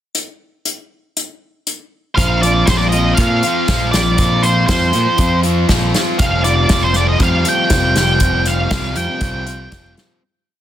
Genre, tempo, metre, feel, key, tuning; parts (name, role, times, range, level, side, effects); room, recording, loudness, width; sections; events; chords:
indie rock; 119 BPM; 4/4; straight; Bb major; A4 = 435 Hz
unplugged drum kit; drums; 0.1-10.1 s; hi-hat, kick drum, snare drum; -18 LUFS; equal
octave-fuzz lead guitar; melody; 2.2-9.9 s; C5 to G5; -18 LUFS; right 2 dB; distortion, digital delay
biting overdriven guitar; riff; 2.2-10.2 s; F3 to F4; -19 LUFS; left 1 dB
growling picked electric bass; bass; 2.2-9.9 s; F1 to Bb2; -17 LUFS; equal; overdrive
small room ambience; dense, heavily limited modern master; -13 LUFS; side -11 dB against mid
0.2-2.2 pickup bar; 2.2-10.2 verse
fade-out 8.2-10.2
0.2 N.C.; 2.2 Bbsus2; 6.2 Fsus2